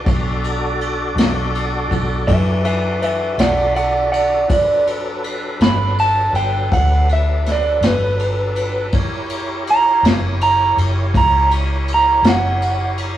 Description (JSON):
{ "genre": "slow blues", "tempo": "54 BPM (dotted quarters)", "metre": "12/8", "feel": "straight", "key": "B minor", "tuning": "A4 = 440 Hz", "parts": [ { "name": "tonewheel organ", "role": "sustained chords", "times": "0.0-13.2 s", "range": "F#3 to D5", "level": "-25 LUFS", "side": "equal", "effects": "slow rotary speaker, chorus vibrato" }, { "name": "vintage muted fingered electric bass", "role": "bass", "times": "0.1-13.2 s", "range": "F#1 to F#2", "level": "-20 LUFS", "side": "equal", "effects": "none" }, { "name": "vintage brush drum kit", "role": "drums", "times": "0.1-13.1 s", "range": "kick drum, ride cymbal, snare drum", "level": "-21 LUFS", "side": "left 1 dB", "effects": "none" }, { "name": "electric slide guitar", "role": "melody", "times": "2.3-13.0 s", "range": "B4 to B5", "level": "-16 LUFS", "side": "right 2 dB", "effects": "none" } ], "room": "moderate stone room reverb, RT60 1.2 s", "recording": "rough rehearsal-room recording, tube saturation, small room ambience", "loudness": "-14 LUFS", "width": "side -12 dB against mid", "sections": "0.0-13.2 A section", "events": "electric slide guitar solo 0.0-13.2", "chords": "0.0 Bm7; 4.5 Gmaj7; 8.9 F#7b9" }